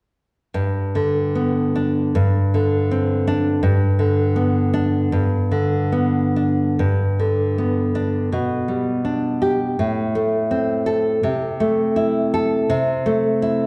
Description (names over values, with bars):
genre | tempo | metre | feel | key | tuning
romantic piece for solo classical guitar | 65-84 BPM | 2/4 | rubato | G major | A4 = 440 Hz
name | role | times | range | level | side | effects
nylon-string guitar | solo | 0.5-13.7 s | G2 to A4 | -20 LUFS | equal | none
room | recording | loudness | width
wet recital hall reverb, RT60 1.4 s | heard from further back in the room | -20 LUFS | mono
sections
0.5-6.8 A section; 6.8-13.7 B section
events
none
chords
0.5 G; 2.1 Gsus4; 3.6 G; 8.3 G/B; 9.8 Am; 11.2 Am/C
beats
| 0.54 1.35 | 2.14 2.90 | 3.62 4.36 | 5.12 5.92 | 6.79 7.58 | 8.32 9.05 | 9.79 10.52 | 11.25 11.97 | 12.70 13.43